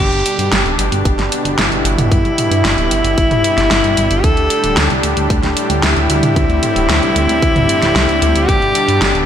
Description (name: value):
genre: synthwave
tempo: 113 BPM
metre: 4/4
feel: straight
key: G major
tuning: A4 = 440 Hz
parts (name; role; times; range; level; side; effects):
- clear alto saxophone; melody; 0.0-9.2 s; E4 to A4; -17 LUFS; left 1 dB; ping-pong delay
- soft supersaw; sustained chords; 0.0-9.3 s; A2 to G4; -18 LUFS; equal; sidechain pumping
- chorused synth bass; bass; 0.0-9.3 s; D1 to G2; -18 LUFS; equal; tube saturation, sidechain pumping
- pop drum kit; drums; 0.1-9.3 s; hi-hat, snare drum, toms; -18 LUFS; right 1 dB; studio reverb, gated reverb
- electronic kick drum; drums; 1.1-8.6 s; none; -16 LUFS; equal; studio reverb
room: light reverb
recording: none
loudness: -11 LUFS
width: side -9 dB against mid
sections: 0.0-9.3 A section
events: none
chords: 0.0 G; 4.2 Dsus4; 8.5 G